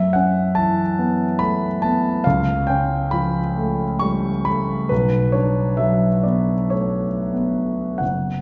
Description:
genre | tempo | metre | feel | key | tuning
classical, impressionist solo piano | 44-73 BPM | 3/4 | rubato | unclear | A4 = 440 Hz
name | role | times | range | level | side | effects
clear concert grand piano | solo | 0.0-8.4 s | F#1 to C#6 | -20 LUFS | equal | none
room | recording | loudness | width
wet recital hall reverb, RT60 1.6 s | heard from further back in the room, nothing above 7.7 kHz | -20 LUFS | mono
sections
0.0-8.4 A section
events
none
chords
0.0 F#m7; 2.2 C#aug7; 4.9 Bm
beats
0.57 1.41 | 2.25 3.11 4.01 | 4.91 5.81 6.75 | 8.01

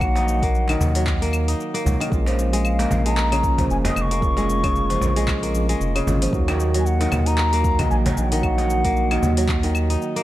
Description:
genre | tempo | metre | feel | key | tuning
organic downtempo | 114 BPM | 4/4 | swing 56% on 16ths | Eb minor | A4 = 440 Hz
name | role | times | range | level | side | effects
hollow bansuri | melody | 0.0-9.7 s | F5 to Eb6 | -26 LUFS | left 2 dB | tape echo
tine electric piano | accompaniment | 0.0-10.2 s | Gb3 to Gb4 | -27 LUFS | right 3 dB | sidechain pumping, tape echo
kora | arpeggios | 0.0-10.2 s | Db3 to Eb4 | -25 LUFS | equal | tape echo
round analog bass | bass | 0.0-10.0 s | F1 to Eb2 | -22 LUFS | equal | sidechain pumping
afro-pop drum kit | drums | 0.0-10.2 s | claves, handclaps, hi-hat, shaker | -29 LUFS | left 2 dB | none
electronic kick drum | drums | 0.0-9.6 s | none | -24 LUFS | equal | none
cajon | percussion | 0.2-9.5 s | none | -29 LUFS | right 1 dB | none
room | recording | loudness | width
light reverb, small room ambience | none | -18 LUFS | side -14 dB against mid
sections
0.0-10.2 A section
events
none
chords
0.0 Ebm; 2.1 Bbm7; 6.3 Ebm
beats
| 0.01 0.54 1.07 1.59 | 2.12 2.65 3.17 3.70 | 4.22 4.75 5.28 5.80 | 6.33 6.86 7.38 7.91 | 8.44 8.96 9.49 10.01

